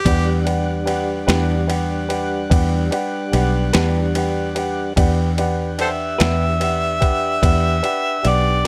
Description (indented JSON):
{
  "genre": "slow blues",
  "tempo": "49 BPM (dotted quarters)",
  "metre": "12/8",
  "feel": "straight",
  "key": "E minor",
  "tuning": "A4 = 440 Hz",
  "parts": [
    { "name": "warm harmonica", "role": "melody", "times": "0.0-8.7 s", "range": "G4 to E5", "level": "-22 LUFS", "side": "equal", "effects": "overdrive" },
    { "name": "warm upright piano", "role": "accompaniment", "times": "0.1-8.6 s", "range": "G4 to F#5", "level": "-26 LUFS", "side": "equal", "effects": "none" },
    { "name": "tonewheel organ", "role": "sustained chords", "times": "0.1-8.7 s", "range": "G3 to F#5", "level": "-29 LUFS", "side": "equal", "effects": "slow rotary speaker" },
    { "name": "fingered electric bass", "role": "bass", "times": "0.1-8.6 s", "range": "B1 to E2", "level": "-22 LUFS", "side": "equal", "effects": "none" },
    { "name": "boom bap sampler-style drum kit", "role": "drums", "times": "0.1-8.4 s", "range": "kick drum, ride cymbal, snare drum", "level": "-26 LUFS", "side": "equal", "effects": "none" },
    { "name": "electric guitar through a small old amp", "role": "accompaniment", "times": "1.3-8.7 s", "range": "E3 to B4", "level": "-28 LUFS", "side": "equal", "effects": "tremolo" }
  ],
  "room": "little or no reverb",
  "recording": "none",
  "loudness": "-19 LUFS",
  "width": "mono",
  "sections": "0.0-8.7 A section",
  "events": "harmonica solo 0.0-8.7",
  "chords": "0.0 Em7",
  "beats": "| 0.05 1.28 2.51 3.74 | 4.97 6.20 7.43 8.66"
}